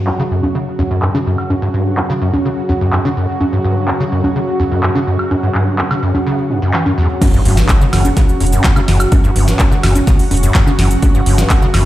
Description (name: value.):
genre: acid house.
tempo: 126 BPM.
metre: 4/4.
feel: straight.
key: unclear.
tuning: A4 = 441 Hz.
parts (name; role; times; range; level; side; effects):
warm analog pad; sustained chords; 0.0-11.9 s; C#3 to F#4; -21 LUFS; equal; chorus, sidechain pumping.
overdriven acid bass; riff; 0.0-11.8 s; E2 to E3; -16 LUFS; equal; distortion, tube saturation, ensemble chorus, dub echo.
granular cloud pad; texture; 0.6-11.9 s; C#4 to F#5; -23 LUFS; right 2 dB; built-in reverb, sidechain pumping.
booming analog drum machine; drums; 0.1-11.8 s; congas, crash cymbal, handclaps, hi-hat, shaker, snare drum, woodblock; -19 LUFS; equal; low-pass filter on hats, low-pass filter on perc, low-pass filter on snare, low-pass filter on cymbals, low-pass filter on room.
electronic kick drum; drums; 7.2-11.6 s; none; -12 LUFS; equal; none.
impact; sound effects; 7.2-9.1 s; none; -22 LUFS; equal; none.
saturated sub bass; bass; 7.5-11.9 s; E1 to F#1; -15 LUFS; equal; sidechain pumping.
room: light reverb.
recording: played on a big sound system in a bare room, stone room reverb.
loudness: -11 LUFS.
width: side -14 dB against mid.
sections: 0.0-7.2 A section; 7.2-11.9 B section.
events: filter sweep on acid bass 0.0-7.2; drop 7.2-11.9; impact 7.2-9.1.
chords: 0.0 F#5.